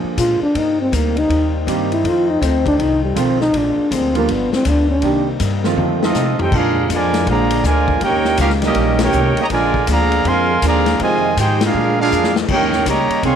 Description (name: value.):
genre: jazz, big band swing.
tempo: 161 BPM.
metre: 4/4.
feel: swing 64% on 8ths.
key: unclear.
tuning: A4 = 440 Hz.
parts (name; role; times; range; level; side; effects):
hollow-body jazz guitar; accompaniment; 0.0-13.4 s; F2 to A4; -26 LUFS; left 12 dB; none.
warm baby grand piano; accompaniment; 0.0-6.1 s; D3 to Ab4; -23 LUFS; right 12 dB; none.
mellow trombone section; sustained chords; 0.0-13.4 s; C3 to F4; -27 LUFS; left 10 dB; stereo widening.
upright bass; bass; 0.0-13.4 s; G1 to C3; -21 LUFS; equal; none.
breathy trombone; melody; 0.2-5.2 s; G3 to F4; -17 LUFS; equal; none.
swinging big-band drum kit; drums; 0.2-13.3 s; crash cymbal, hi-hat, kick drum, ride cymbal, snare drum, toms; -24 LUFS; left 4 dB; none.
bright trumpet section; melody; 6.0-13.4 s; C4 to C6; -17 LUFS; right 1 dB; none.
muted trombone section; second line; 6.0-13.4 s; C3 to G4; -20 LUFS; right 10 dB; tape echo.
room: moderate echo chamber reverb, RT60 2.3 s.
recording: 1960s-style stereo with parts hard left and right.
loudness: -14 LUFS.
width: side -8 dB against mid.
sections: 0.0-6.5 A section; 6.5-13.4 B section.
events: trombone solo 0.0-6.5; drum fill 5.8-6.5, 12.1-12.5; band accent 8.9, 11.5.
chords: 0.0 Bb7; 0.5 Cm7; 2.0 F7; 3.5 Bb7; 4.3 G7; 5.0 Cm7; 5.8 F7; 6.5 Bb7; 8.0 Eb7; 9.5 Bb7; 11.0 Fm7; 11.7 Bb7; 12.5 Eb7.